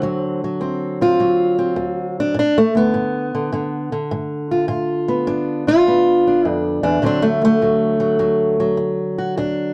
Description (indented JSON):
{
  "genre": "acoustic country blues, solo or duo",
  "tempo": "103 BPM",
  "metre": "4/4",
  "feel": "swing 67% on 8ths",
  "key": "D mixolydian",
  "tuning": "A4 = 441 Hz",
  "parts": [
    { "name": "fingerpicked old ladder-braced acoustic guitar", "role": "solo", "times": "0.0-9.7 s", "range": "D2 to F#4", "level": "-18 LUFS", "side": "equal", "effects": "none" }
  ],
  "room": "moderate studio reverb, RT60 0.6 s",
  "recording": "dark, warm production",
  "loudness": "-18 LUFS",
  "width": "mono",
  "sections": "0.0-9.7 A section",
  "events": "steel-string acoustic guitar solo 0.0-9.7",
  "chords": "0.0 D7; 2.4 G7; 7.0 D"
}